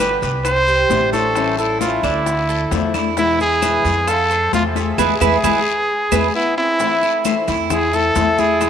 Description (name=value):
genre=latin, Cuban son and guajira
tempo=132 BPM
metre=4/4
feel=straight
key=unclear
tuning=A4 = 440 Hz
part: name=clear trumpet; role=melody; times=0.0-8.7 s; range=E4 to C5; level=-18 LUFS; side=right 1 dB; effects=tape echo
part: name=flamenco guitar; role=accompaniment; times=0.0-8.7 s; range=B2 to G4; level=-23 LUFS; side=left 6 dB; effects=none
part: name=Cuban tres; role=arpeggios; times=0.0-8.7 s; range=D4 to F5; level=-23 LUFS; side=right 10 dB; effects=none
part: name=upright bass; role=bass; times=0.0-8.7 s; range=G1 to F2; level=-24 LUFS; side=equal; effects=none
part: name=congas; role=percussion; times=0.0-8.7 s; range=none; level=-28 LUFS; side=left 12 dB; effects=none
part: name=guiro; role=percussion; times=0.0-8.7 s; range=none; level=-32 LUFS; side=left 13 dB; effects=none
part: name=bongos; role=percussion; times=0.2-8.7 s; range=none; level=-30 LUFS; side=left 11 dB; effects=none
part: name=maracas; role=percussion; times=0.2-8.7 s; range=none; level=-31 LUFS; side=right 12 dB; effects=none
part: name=claves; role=percussion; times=0.4-8.7 s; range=none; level=-29 LUFS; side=left 2 dB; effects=none
part: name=hollow-body jazz guitar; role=second line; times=6.3-8.7 s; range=B3 to E4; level=-26 LUFS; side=left 3 dB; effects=none
room=moderate plate reverb, RT60 3.1 s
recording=1960s-style stereo with parts hard left and right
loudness=-14 LUFS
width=side -8 dB against mid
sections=0.0-6.8 A section; 6.8-8.7 B section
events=band accent 5.0-6.8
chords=0.4 Cadd9; 1.4 A7; 2.3 Dmadd9; 3.2 E; 4.1 F; 5.0 E; 6.8 Am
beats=0.00 0.45 0.90 | 1.36 1.81 2.26 2.72 | 3.17 3.62 4.08 4.53 | 4.99 5.44 5.89 6.34 | 6.80 7.25 7.70 8.15 | 8.61